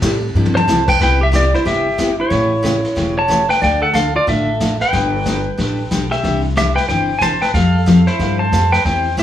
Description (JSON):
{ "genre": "country, western swing", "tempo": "184 BPM", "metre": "4/4", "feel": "swing 62% on 8ths", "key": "C major", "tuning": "A4 = 444 Hz", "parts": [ { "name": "picked steel-string acoustic guitar", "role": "accompaniment", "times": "0.0-9.2 s", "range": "C3 to A4", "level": "-19 LUFS", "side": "equal", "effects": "none" }, { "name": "upright bass", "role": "bass", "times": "0.0-9.2 s", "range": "E1 to A2", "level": "-19 LUFS", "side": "equal", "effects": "none" }, { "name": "vintage brush drum kit", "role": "drums", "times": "0.0-9.2 s", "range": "brushed snare drum, crash cymbal, hi-hat, kick drum, ride cymbal, snare drum, toms", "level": "-24 LUFS", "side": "left 1 dB", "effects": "none" }, { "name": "pedal steel guitar", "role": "melody", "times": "0.6-9.2 s", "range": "E4 to A5", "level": "-16 LUFS", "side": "equal", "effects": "plate reverb" } ], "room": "light reverb", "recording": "small room ambience", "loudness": "-13 LUFS", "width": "side -11 dB against mid", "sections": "1.0-9.2 A section", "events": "drum fill 0.3-0.7", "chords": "0.0 C6; 1.0 Cmaj7; 2.3 A7; 3.6 Dm; 4.9 Gadd9; 6.2 Cadd9; 7.5 Fadd9", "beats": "0.02 0.34 0.67 | 1.00 1.32 1.65 1.98 | 2.31 2.63 2.96 3.29 | 3.62 3.94 4.27 4.59 | 4.92 5.25 5.58 5.90 | 6.23 6.56 6.88 7.21 | 7.54 7.86 8.19 8.52 | 8.84 9.17" }